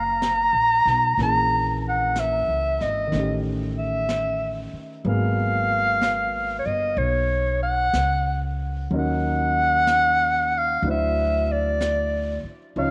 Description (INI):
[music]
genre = jazz ballad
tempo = 62 BPM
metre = 4/4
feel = swing 67% on 8ths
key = unclear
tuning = A4 = 438 Hz
[part]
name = mellow clarinet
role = melody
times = 0.0-12.9 s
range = Db5 to A#5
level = -24 LUFS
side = equal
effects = slapback echo
[part]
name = dark concert grand piano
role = accompaniment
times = 0.0-12.9 s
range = D#3 to Db5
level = -32 LUFS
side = equal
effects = none
[part]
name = upright bass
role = bass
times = 0.0-12.9 s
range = F#1 to Eb2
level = -29 LUFS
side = equal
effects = none
[part]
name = vintage brush drum kit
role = drums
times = 0.2-12.9 s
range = brushed snare drum, hi-hat, snare drum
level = -37 LUFS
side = equal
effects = none
[sound]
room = moderate spring reverb, RT60 3.0 s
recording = none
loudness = -22 LUFS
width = mono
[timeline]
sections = 0.0-12.9 A section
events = none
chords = 0.0 Bmaj9; 1.2 Bbm7b5; 3.1 A7#11; 5.0 Abm9; 8.9 Ebm7; 10.8 D9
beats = 0.22 | 1.18 2.15 3.11 4.08 | 5.04 6.01 6.97 7.94 | 8.90 9.87 10.83 11.80 | 12.76